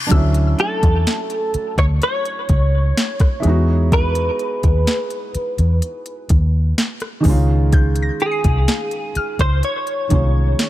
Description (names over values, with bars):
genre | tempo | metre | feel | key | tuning
contemporary R&B | 63 BPM | 4/4 | straight | unclear | A4 = 440 Hz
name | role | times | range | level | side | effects
felt-muted upright piano | accompaniment | 0.0-10.7 s | D#3 to F#4 | -24 LUFS | right 2 dB | none
mallet-like synth pluck | texture | 0.0-10.7 s | D6 to B#6 | -30 LUFS | left 4 dB | chorus, digital delay
vintage muted fingered electric bass | bass | 0.1-10.5 s | B#1 to E2 | -16 LUFS | equal | none
smooth R&B drum kit | drums | 0.1-10.7 s | hi-hat, kick drum, rim click, snare drum | -17 LUFS | equal | overdrive
direct-recorded clean electric guitar | melody | 0.6-10.7 s | G#4 to C#5 | -22 LUFS | equal | ensemble chorus, digital delay
room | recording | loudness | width
little or no reverb | none | -15 LUFS | side -14 dB against mid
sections
0.1-10.7 A section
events
none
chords
0.1 Dmaj9; 3.4 Emaj9; 7.3 C#maj9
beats
| 0.11 1.06 2.02 2.97 | 3.92 4.87 5.83 6.78 | 7.73 8.68 9.63 10.59